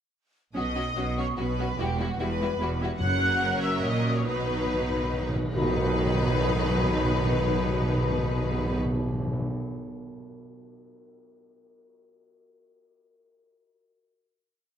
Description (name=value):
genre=cinematic, heroic adventure film score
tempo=145 BPM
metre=3/4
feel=straight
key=B major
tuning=A4 = 441 Hz
part: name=clear symphonic viola section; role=accompaniment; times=0.5-8.8 s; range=F#3 to E4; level=-32 LUFS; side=right 1 dB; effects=none
part: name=rich symphonic violin section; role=melody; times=0.6-8.8 s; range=F#4 to B4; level=-35 LUFS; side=left 4 dB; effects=none
part: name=mellow hollow large flute ensemble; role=second line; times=0.6-8.8 s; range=F#5 to F#6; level=-33 LUFS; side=equal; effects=none
part: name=rich studio violin section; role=second line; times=0.6-8.8 s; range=F#4 to F#5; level=-34 LUFS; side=left 4 dB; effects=none
part: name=clear chamber cello section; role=bass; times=0.6-8.8 s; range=E2 to B2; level=-32 LUFS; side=right 2 dB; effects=none
part: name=rich symphonic double bass section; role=bass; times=0.6-8.8 s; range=E1 to B1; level=-32 LUFS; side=right 2 dB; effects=none
part: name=cymbal swell and tam-tam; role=percussion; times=3.0-7.2 s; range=none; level=-37 LUFS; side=left 2 dB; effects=none
part: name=timpani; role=percussion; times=3.0-9.5 s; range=F#2 to B2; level=-30 LUFS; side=equal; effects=none
room=moderate concert hall reverb, RT60 2.0 s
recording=none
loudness=-24 LUFS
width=side -9 dB against mid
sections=0.6-5.5 theme; 5.5-8.0 final chord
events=timpani fill 4.3-5.5; band accent 5.5-6.0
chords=0.6 Badd9; 1.8 Emadd9; 3.0 F#; 4.3 B